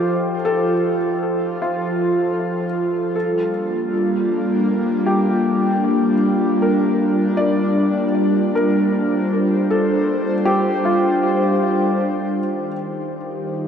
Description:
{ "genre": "ambient", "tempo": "78 BPM", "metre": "3/4", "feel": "straight", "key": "unclear", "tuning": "A4 = 440 Hz", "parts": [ { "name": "airy breathy pad", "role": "sustained chords", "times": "0.0-13.7 s", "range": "Eb3 to C5", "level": "-18 LUFS", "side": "equal", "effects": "chorus, shimmer reverb" }, { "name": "felt-muted upright piano", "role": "arpeggios", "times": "0.0-12.7 s", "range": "F4 to Eb5", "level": "-22 LUFS", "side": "left 1 dB", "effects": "ping-pong delay, shimmer reverb" } ], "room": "wet huge ambient reverb, RT60 8.4 s", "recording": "worn, warbling old tape, cassette tape, warbly pitch drift", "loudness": "-17 LUFS", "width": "side -8 dB against mid", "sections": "0.0-12.4 A section; 12.4-13.7 B section", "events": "none", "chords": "0.0 F; 3.2 Gm7; 12.4 Eb" }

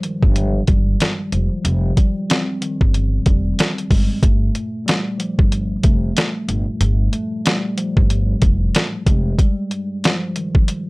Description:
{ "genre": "hip hop, boom-bap hip-hop", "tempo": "93 BPM", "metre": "4/4", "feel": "swing 60% on 16ths", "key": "unclear", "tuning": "A4 = 439 Hz", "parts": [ { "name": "mellow tine electric piano", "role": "accompaniment", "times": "0.0-10.9 s", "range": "G2 to C4", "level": "-23 LUFS", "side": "equal", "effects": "medium stereo tremolo, cassette tape, high-pass filter, low-pass filter" }, { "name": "boom bap sampler-style drum kit", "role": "drums", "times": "0.0-10.9 s", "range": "hi-hat, kick drum, snare drum", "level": "-16 LUFS", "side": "equal", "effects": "none" }, { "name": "upright bass", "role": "bass", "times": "0.2-9.3 s", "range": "F1 to G1", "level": "-19 LUFS", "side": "equal", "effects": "none" } ], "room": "little or no reverb", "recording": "dry, gritty hardware recording", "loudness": "-16 LUFS", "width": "side -26 dB against mid", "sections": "0.0-10.9 A section", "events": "break 9.4-10.9", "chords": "0.0 Fm9; 4.2 Gm9; 9.1 Fm9" }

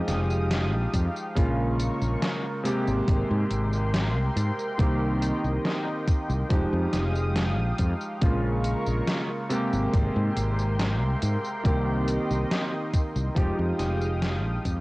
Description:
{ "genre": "vaporwave", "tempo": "70 BPM", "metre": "4/4", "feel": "straight", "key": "Ab major", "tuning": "A4 = 439 Hz", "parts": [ { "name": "warm electric grand piano", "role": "accompaniment", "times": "0.0-14.8 s", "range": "C3 to G4", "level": "-29 LUFS", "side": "equal", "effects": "lush chorus, cassette tape, analog delay" }, { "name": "lush unison pad", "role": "sustained chords", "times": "0.0-14.8 s", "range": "Ab3 to Eb6", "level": "-34 LUFS", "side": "equal", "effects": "chorus, cassette tape" }, { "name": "fretless electric bass", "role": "bass", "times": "0.1-14.8 s", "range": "F1 to Ab2", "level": "-26 LUFS", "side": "equal", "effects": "tube saturation" }, { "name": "gated 80s digital drum machine", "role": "drums", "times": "0.1-14.8 s", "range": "hi-hat, snare drum, tambourine", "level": "-31 LUFS", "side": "equal", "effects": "gated reverb, gated reverb snare, vintage 12-bit sampler grit, cassette tape" }, { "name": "electronic kick drum", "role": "drums", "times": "0.9-14.8 s", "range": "none", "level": "-23 LUFS", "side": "equal", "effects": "vintage 12-bit sampler grit, cassette tape" } ], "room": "little or no reverb", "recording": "home recording on cassette", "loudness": "-23 LUFS", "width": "side -21 dB against mid", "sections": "0.0-14.8 A section", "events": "fade-out 12.8-14.8", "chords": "0.0 Fm9; 1.4 Bbm7; 2.6 Abmaj9; 4.8 Cm7; 6.5 Fm9; 8.2 Bbm7; 9.5 Abmaj9; 11.6 Cm7; 13.4 Fm9" }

